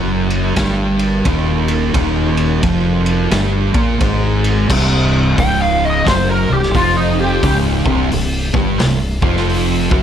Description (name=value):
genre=stoner and doom metal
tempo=88 BPM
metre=4/4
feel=swing 62% on 8ths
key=C minor, C phrygian from 4.7 s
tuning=A4 = 440 Hz
part: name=thick fuzz guitar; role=riff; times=0.0-10.0 s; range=C2 to Bb3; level=-16 LUFS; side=right 1 dB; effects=distortion
part: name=growling fingered electric bass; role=bass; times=0.0-10.0 s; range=C1 to Bb1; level=-19 LUFS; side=equal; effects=overdrive
part: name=raw garage drum kit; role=drums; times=0.3-10.0 s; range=crash cymbal, hi-hat, kick drum, ride cymbal, snare drum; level=-19 LUFS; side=equal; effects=none
part: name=fuzz lead guitar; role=melody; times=5.4-7.6 s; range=Eb4 to G5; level=-17 LUFS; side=equal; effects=wah, distortion, analog delay
room=light reverb, small room ambience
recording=none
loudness=-13 LUFS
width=side -9 dB against mid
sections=0.0-4.7 A section; 4.7-10.0 B section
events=lead electric guitar solo 4.7-10.0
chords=0.0 Cm (rootless); 4.7 C5